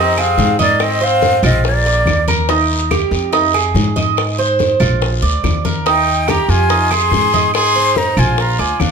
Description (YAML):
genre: latin, Cuban son and guajira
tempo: 142 BPM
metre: 4/4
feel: straight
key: Eb major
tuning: A4 = 443 Hz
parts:
  - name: breathy jazz flute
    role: melody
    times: 0.0-2.2, 5.9-8.9 s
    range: D5 to C6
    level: -16 LUFS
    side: left 3 dB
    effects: none
  - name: brilliant trumpet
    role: second line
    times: 0.0-2.2, 5.9-8.9 s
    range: Bb3 to Ab4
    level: -21 LUFS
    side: right 6 dB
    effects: none
  - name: Cuban tres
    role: arpeggios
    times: 0.0-8.9 s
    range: Eb4 to Eb5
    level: -17 LUFS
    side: right 6 dB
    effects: tape echo
  - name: upright bass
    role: bass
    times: 0.0-8.9 s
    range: Bb1 to Ab2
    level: -18 LUFS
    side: equal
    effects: none
  - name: bongos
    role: percussion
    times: 0.2-8.9 s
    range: none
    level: -24 LUFS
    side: left 8 dB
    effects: none
  - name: claves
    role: percussion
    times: 0.2-8.9 s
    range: none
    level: -27 LUFS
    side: right 4 dB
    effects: none
  - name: congas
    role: percussion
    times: 0.2-8.9 s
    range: none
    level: -21 LUFS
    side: left 2 dB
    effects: none
  - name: guiro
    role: percussion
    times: 0.4-8.9 s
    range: none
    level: -27 LUFS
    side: left 5 dB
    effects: none
room: moderate studio reverb, RT60 0.6 s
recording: none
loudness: -12 LUFS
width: side -6 dB against mid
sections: 0.0-8.9 A section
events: none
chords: 0.0 Fm7; 0.8 Ab; 1.6 Bb; 2.5 Eb; 3.3 Fm7; 4.2 Ab; 5.0 Bb; 5.9 Eb; 6.7 Fm7; 7.5 Ab; 8.4 Bb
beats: 0.38 | 0.80 1.22 1.64 2.06 | 2.49 2.91 3.33 3.75 | 4.17 4.59 5.01 5.43 | 5.86 6.28 6.70 7.12 | 7.54 7.96 8.38 8.80